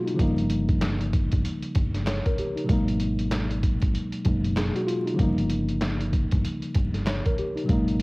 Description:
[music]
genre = hip hop, boom-bap hip-hop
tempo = 96 BPM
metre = 4/4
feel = swing 59% on 16ths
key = unclear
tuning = A4 = 440 Hz
[part]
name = mellow tine electric piano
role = accompaniment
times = 0.0-8.0 s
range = B2 to C#5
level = -26 LUFS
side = equal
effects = medium stereo tremolo, cassette tape, high-pass filter, low-pass filter
[part]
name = trip hop sampler-style drum kit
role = drums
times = 0.1-8.0 s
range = handclaps, hi-hat, kick drum, snare drum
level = -26 LUFS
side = equal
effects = cassette tape
[part]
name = deep dub fingered electric bass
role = bass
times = 0.2-8.0 s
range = F#1 to G#1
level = -29 LUFS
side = equal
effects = none
[sound]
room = little or no reverb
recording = home recording on cassette, vinyl crackle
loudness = -22 LUFS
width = side -25 dB against mid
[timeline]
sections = 0.0-8.0 A section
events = none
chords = 0.2 D#7/G; 2.7 G#m9; 5.2 D#7/G

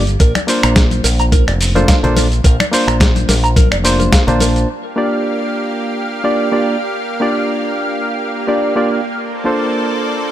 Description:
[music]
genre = nu-disco, nu disco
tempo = 107 BPM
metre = 4/4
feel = swing 55% on 16ths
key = G minor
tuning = A4 = 440 Hz
[part]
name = barky reed electric piano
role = accompaniment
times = 0.0-10.3 s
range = Bb3 to A5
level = -17 LUFS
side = equal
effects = ping-pong delay
[part]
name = fingered electric bass with an envelope filter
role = bass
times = 0.0-4.6 s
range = F1 to Bb1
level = -16 LUFS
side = equal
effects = tube saturation
[part]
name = dusty soul sampler-style drum kit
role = drums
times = 0.1-4.7 s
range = finger snaps, hi-hat, shaker, snare drum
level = -17 LUFS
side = equal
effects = overdrive
[part]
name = direct-recorded clean electric guitar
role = riff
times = 0.2-4.5 s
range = Bb4 to Bb5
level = -22 LUFS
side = right 2 dB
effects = lush chorus, ping-pong delay
[part]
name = electronic kick drum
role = drums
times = 0.2-4.2 s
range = none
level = -11 LUFS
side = equal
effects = none
[part]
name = congas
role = percussion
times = 0.4-4.5 s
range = none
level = -24 LUFS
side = left 4 dB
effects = none
[part]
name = lush unison pad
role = sustained chords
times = 4.9-10.3 s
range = Bb3 to F5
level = -20 LUFS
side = right 1 dB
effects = chorus, sidechain pumping
[sound]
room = light reverb, digital ambience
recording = none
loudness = -12 LUFS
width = side -12 dB against mid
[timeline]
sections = 0.0-4.7 A section; 4.7-10.3 B section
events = none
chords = 0.2 Bbmaj9; 4.7 Gm7; 9.2 Bbmaj9

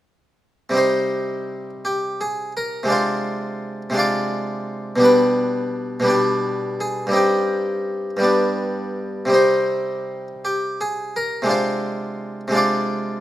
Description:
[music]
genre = classical, baroque-style suite movement for harpsichord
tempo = 56 BPM (dotted quarters)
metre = 6/8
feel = rubato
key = C minor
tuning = A4 = 440 Hz
[part]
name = harpsichord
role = solo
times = 0.7-13.2 s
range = G2 to D5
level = -19 LUFS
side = equal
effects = none
[sound]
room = light reverb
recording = close, detailed microphones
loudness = -19 LUFS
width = side -14 dB against mid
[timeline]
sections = 0.8-13.2 A section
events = none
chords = 0.8 Cm; 2.9 Dm7b5/C; 5.0 G/B; 7.2 Cm/G; 8.3 G; 9.4 Cm; 11.5 Dm7b5/C

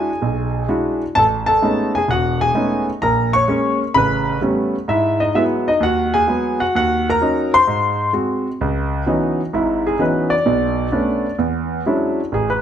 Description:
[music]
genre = solo jazz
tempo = 129 BPM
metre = 4/4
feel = swing 68% on 8ths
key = C# minor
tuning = A4 = 437 Hz
[part]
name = warm concert grand piano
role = solo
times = 0.0-12.6 s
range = E1 to C#6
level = -16 LUFS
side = equal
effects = none
[sound]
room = moderate large studio reverb, RT60 1.1 s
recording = none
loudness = -16 LUFS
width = side -9 dB against mid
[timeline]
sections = 0.0-8.6 A section; 8.6-12.6 B section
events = grand piano solo 8.6-12.6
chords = 0.0 E9; 1.2 Amaj9#11; 3.0 A#m7; 3.9 A9; 4.9 G#m7; 6.7 D#m7; 7.7 G#7; 8.6 C#m11; 10.5 Bm9; 11.4 E13

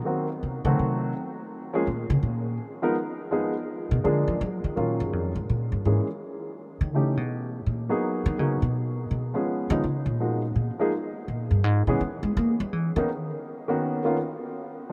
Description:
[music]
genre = jazz piano trio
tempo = 166 BPM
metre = 4/4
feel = swing 64% on 8ths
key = Eb minor from 4.4 s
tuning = A4 = 439 Hz
[part]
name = warm baby grand piano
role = melody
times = 0.1-14.9 s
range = Eb3 to Bb4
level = -30 LUFS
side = equal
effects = none
[part]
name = upright bass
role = bass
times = 0.4-13.3 s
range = F2 to Bb3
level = -28 LUFS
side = equal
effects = none
[sound]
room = wet huge ambient reverb, RT60 7.2 s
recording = in a vast, echoing space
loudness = -27 LUFS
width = mono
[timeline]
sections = 0.0-4.4 A section; 4.4-14.9 A section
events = upright bass solo 0.0-14.9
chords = 0.1 Cm7b5; 0.8 Cdim7; 1.5 Bb7(no3); 3.0 Fm7b5; 3.7 Bb7; 4.4 Ebm9; 5.8 Bbm7b5; 6.6 A7#11; 7.3 Abm9; 10.2 Gbmaj13 (rootless); 11.6 Db7(no3) (rootless); 12.4 Eb(b9); 13.1 Bmaj9

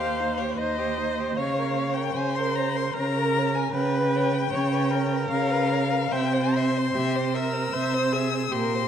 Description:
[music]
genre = classical, slow romantic movement for string quartet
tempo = 76 BPM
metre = 3/4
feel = rubato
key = unclear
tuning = A4 = 439 Hz
[part]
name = warm violin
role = melody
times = 0.0-8.9 s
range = Db5 to E6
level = -29 LUFS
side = left 10 dB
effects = none
[part]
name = warm violin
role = second line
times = 0.0-8.9 s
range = Eb4 to E5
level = -31 LUFS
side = left 2 dB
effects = none
[part]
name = warm viola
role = accompaniment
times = 0.0-8.9 s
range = G4 to Db5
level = -28 LUFS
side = right 2 dB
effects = none
[part]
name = warm cello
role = bass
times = 0.0-8.9 s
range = Eb2 to Db3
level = -26 LUFS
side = right 3 dB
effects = none
[sound]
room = wet concert hall reverb, RT60 2.3 s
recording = dark, warm production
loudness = -22 LUFS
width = side -8 dB against mid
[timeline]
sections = 0.0-8.9 A section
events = none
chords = 0.0 Cm/Eb; 1.4 Bbm/Db; 3.7 Db7; 6.1 C

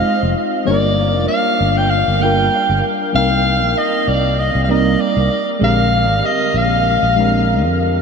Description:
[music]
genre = sunset chillout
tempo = 97 BPM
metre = 4/4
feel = swing 56% on 16ths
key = unclear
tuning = A4 = 440 Hz
[part]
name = warm soprano saxophone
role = melody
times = 0.0-7.8 s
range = D5 to G5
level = -16 LUFS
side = equal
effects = diffuse ambient delay
[part]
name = mellow FM electric piano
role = accompaniment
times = 0.0-8.0 s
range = D3 to C5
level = -18 LUFS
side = moving between left 4 dB and right 4 dB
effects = chorus, phaser, auto-pan, analog delay
[part]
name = sustaining fretless electric bass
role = bass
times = 0.2-8.0 s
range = F1 to F2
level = -18 LUFS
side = equal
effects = none
[sound]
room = wet huge ambient reverb, RT60 7.9 s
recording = dreamy mix soaked in reverb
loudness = -13 LUFS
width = side -6 dB against mid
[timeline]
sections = 0.0-8.0 A section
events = none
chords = 0.0 Fm7; 0.7 Gm7; 3.1 Cm7; 5.3 Bb13

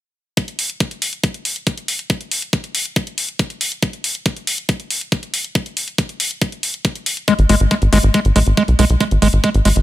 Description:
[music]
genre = psychedelic trance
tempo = 139 BPM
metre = 4/4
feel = straight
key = G# phrygian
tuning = A4 = 440 Hz
[part]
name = electronic hi-hat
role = drums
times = 0.4-9.8 s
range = none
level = -22 LUFS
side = left 1 dB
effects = studio reverb
[part]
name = electronic kick drum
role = drums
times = 0.4-9.5 s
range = none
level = -17 LUFS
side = equal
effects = high-pass filter on kick, studio reverb
[part]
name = overdriven acid bass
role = riff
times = 7.3-9.7 s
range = G#3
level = -17 LUFS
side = moving between left 6 dB and right 5 dB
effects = distortion, auto-pan, sidechain pumping, tape echo
[part]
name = tight sequencer bass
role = bass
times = 7.4-9.8 s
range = G#1 to B1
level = -13 LUFS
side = equal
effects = none
[sound]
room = digital ambience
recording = none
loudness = -16 LUFS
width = side -14 dB against mid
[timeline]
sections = 0.4-9.8 A section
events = none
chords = none

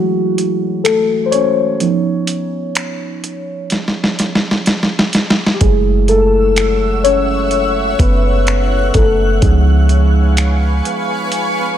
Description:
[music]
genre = contemporary R&B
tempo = 63 BPM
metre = 4/4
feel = swing 54% on 16ths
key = F# dorian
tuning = A4 = 442 Hz
[part]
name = muted felt-like synth keys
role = accompaniment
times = 0.0-11.8 s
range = E3 to C#5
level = -16 LUFS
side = left 1 dB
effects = chorus, phaser
[part]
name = dusty soul sampler-style drum kit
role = drums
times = 0.4-11.6 s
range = finger snaps, hi-hat, kick drum, snare drum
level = -16 LUFS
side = equal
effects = overdrive
[part]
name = granular cloud pad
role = sustained chords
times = 6.4-11.8 s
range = B4 to F#6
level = -19 LUFS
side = left 1 dB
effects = built-in reverb
[part]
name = clean 808-style bass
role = bass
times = 5.6-10.8 s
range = F#1 to C#2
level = -14 LUFS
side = equal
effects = none
[sound]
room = little or no reverb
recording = none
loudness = -12 LUFS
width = side -10 dB against mid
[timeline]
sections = 0.0-11.8 A section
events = break 0.0-5.6; synth keys solo 0.0-11.8; drum fill 3.7-5.6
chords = 0.0 F#m7; 1.8 C#7; 5.6 F#m7; 9.4 C#7

